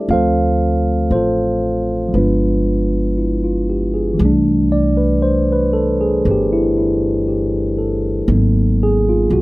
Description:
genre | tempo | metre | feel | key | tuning
jazz ballad | 59 BPM | 4/4 | swing 66% on 8ths | C major | A4 = 441 Hz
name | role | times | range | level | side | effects
mellow tine electric piano | accompaniment | 0.0-9.4 s | E3 to F5 | -15 LUFS | equal | none
upright bass | bass | 0.1-9.4 s | G1 to D2 | -19 LUFS | equal | none
room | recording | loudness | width
little or no reverb | close, detailed microphones | -14 LUFS | side -20 dB against mid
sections
0.0-4.2 A section; 4.2-9.4 B section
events
none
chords
0.1 Dm7; 2.1 G7b9; 4.2 C69; 8.3 Abm7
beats
| 0.11 1.13 2.15 3.17 | 4.20 5.22 6.24 7.26 | 8.29 9.30

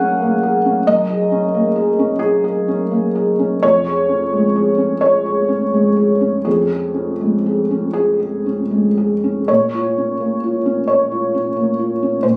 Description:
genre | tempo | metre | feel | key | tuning
neoclassical minimalist piano | 37-46 BPM (dotted quarters) | 6/8 | rubato | Bb minor | A4 = 439 Hz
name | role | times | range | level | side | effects
felt-muted upright piano | solo | 0.0-12.4 s | F2 to Ab5 | -17 LUFS | equal | none
room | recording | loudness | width
moderate small room reverb, RT60 0.5 s | recorded on a phone in the room, club reverb | -17 LUFS | mono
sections
0.0-9.5 A section; 9.5-12.4 B section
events
none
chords
0.0 Gbadd9; 3.6 Db/F; 9.5 Bbm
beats
| 0.86 2.19 | 3.62 5.00 | 6.46 7.95 | 9.49 10.88 | 12.23

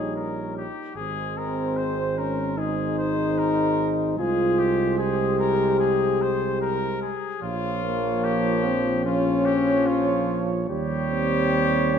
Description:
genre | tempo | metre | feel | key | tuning
classical, brass quintet | 74 BPM | 4/4 | rubato | Ab major | A4 = 440 Hz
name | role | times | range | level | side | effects
clear trumpet | melody | 0.0-12.0 s | F4 to C5 | -30 LUFS | left 6 dB | none
mellow flugelhorn | second line | 0.0-12.0 s | C5 to Db5 | -30 LUFS | right 7 dB | none
clear trombone | accompaniment | 0.0-12.0 s | F3 to Ab3 | -31 LUFS | right 3 dB | none
mellow French horn | accompaniment | 0.0-12.0 s | Bb3 to G4 | -24 LUFS | left 3 dB | none
mellow tuba | bass | 0.0-12.0 s | Ab1 to Eb2 | -29 LUFS | right 4 dB | none
room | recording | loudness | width
moderate concert hall reverb, RT60 2.0 s | none | -21 LUFS | side -7 dB against mid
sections
0.0-12.0 A section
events
none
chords
0.0 Eb7/Bb; 1.0 Ab; 4.2 Ab/C; 7.4 Bbm; 10.7 Eb7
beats
0.15 | 0.97 1.78 2.59 3.39 | 4.19 5.00 5.81 6.62 | 7.43 8.24 9.05 9.87 | 10.70 11.52

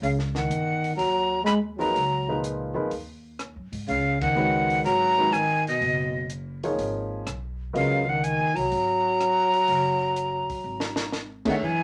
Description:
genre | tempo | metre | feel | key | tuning
modal jazz | 124 BPM | 4/4 | swing 69% on 8ths | unclear | A4 = 440 Hz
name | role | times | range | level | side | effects
breathy bright jazz flute | melody | 0.0-11.8 s | D#5 to B5 | -26 LUFS | equal | none
mellow trombone | second line | 0.0-11.8 s | B2 to G#3 | -30 LUFS | equal | none
upright bass | bass | 0.0-11.8 s | F#1 to G#2 | -36 LUFS | equal | none
compact cocktail drum kit | drums | 0.0-11.5 s | crash cymbal, hi-hat, kick drum, ride cymbal, rim click, snare drum | -38 LUFS | equal | none
warm upright piano | accompaniment | 1.8-8.0, 11.5-11.6 s | A#2 to E5 | -30 LUFS | equal | none
room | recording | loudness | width
wet club reverb, RT60 0.5 s | none | -25 LUFS | mono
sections
0.0-11.6 A section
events
band accent 4.1; drum fill 10.6-11.1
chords
0.0 G#13sus4; 3.9 C#13sus4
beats
| 0.03 0.51 0.99 1.47 | 1.96 2.44 2.92 3.40 | 3.89 4.37 4.85 5.33 | 5.82 6.30 6.78 7.26 | 7.75 8.23 8.71 9.19 | 9.68 10.16 10.64 11.12 | 11.61

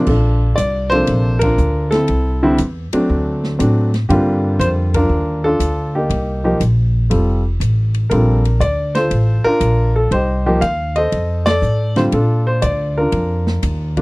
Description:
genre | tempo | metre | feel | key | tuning
jazz piano trio | 120 BPM | 4/4 | swing 68% on 8ths | Bb major | A4 = 437 Hz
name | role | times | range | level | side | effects
warm grand piano | melody | 0.0-14.0 s | C3 to F5 | -17 LUFS | equal | none
upright bass | bass | 0.1-14.0 s | F1 to Bb2 | -16 LUFS | equal | none
open jazz drum kit | drums | 0.1-14.0 s | crash cymbal, hi-hat, kick drum, ride cymbal, snare drum | -26 LUFS | equal | none
room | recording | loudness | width
little or no reverb | dry, close 1970s-style studio recording | -14 LUFS | side -24 dB against mid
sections
0.1-14.0 A section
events
band accent 1.3, 4.8, 11.4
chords
0.1 Bbmaj7; 2.1 Am; 3.1 D7; 4.1 Gm7; 6.1 Cm7; 7.1 F; 8.1 Bbmaj7; 10.1 Cm; 11.1 F; 12.1 Bb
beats
| 0.07 0.58 1.08 1.58 | 2.09 2.59 3.09 3.59 | 4.10 4.60 5.10 5.60 | 6.10 6.61 7.11 7.61 | 8.11 8.61 9.11 9.61 | 10.11 10.62 11.12 11.62 | 12.12 12.62 13.13 13.63

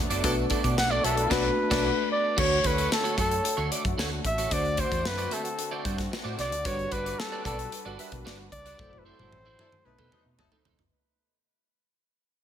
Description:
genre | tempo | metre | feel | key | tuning
polished 1980s jazz-funk pop | 112 BPM | 4/4 | straight | unclear | A4 = 439 Hz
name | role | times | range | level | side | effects
bell-like FM electric piano | accompaniment | 0.0-10.9 s | G3 to C#5 | -34 LUFS | left 3 dB | tremolo, wide subtle chorus
lush unison pad | sustained chords | 0.0-10.9 s | B2 to C#5 | -38 LUFS | equal | chorus
hollow-body short-scale fingered electric bass | bass | 0.0-10.9 s | E1 to B2 | -33 LUFS | equal | none
electric guitar at the edge of break-up | riff | 0.1-10.8 s | D#4 to E5 | -35 LUFS | right 6 dB | ensemble chorus
modern studio drum kit | drums | 0.1-10.9 s | crash cymbal, hi-hat, kick drum, snare drum, toms | -31 LUFS | left 1 dB | gated reverb
dark horn section | second line | 0.2-1.8, 9.6-10.6 s | F#3 to A4 | -34 LUFS | left 2 dB | none
warm flugelhorn | melody | 0.8-10.4 s | A4 to F#5 | -29 LUFS | equal | none
room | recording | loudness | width
light reverb, small room ambience | none | -24 LUFS | side -9 dB against mid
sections
0.0-2.4 A section; 2.4-10.9 B section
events
band accent 1.3-2.4, 8.8-10.9; fade-out 2.4-10.9; drum fill 8.8-10.9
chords
0.0 Bm7; 2.4 Dmaj7; 4.5 D7; 6.6 Gmaj7; 8.8 F#m7b5; 9.9 B7b9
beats
| 0.24 0.78 1.31 1.84 | 2.38 2.91 3.45 3.98 | 4.51 5.05 5.58 6.12 | 6.65 7.18 7.72 8.25 | 8.79 9.32 9.85 10.39

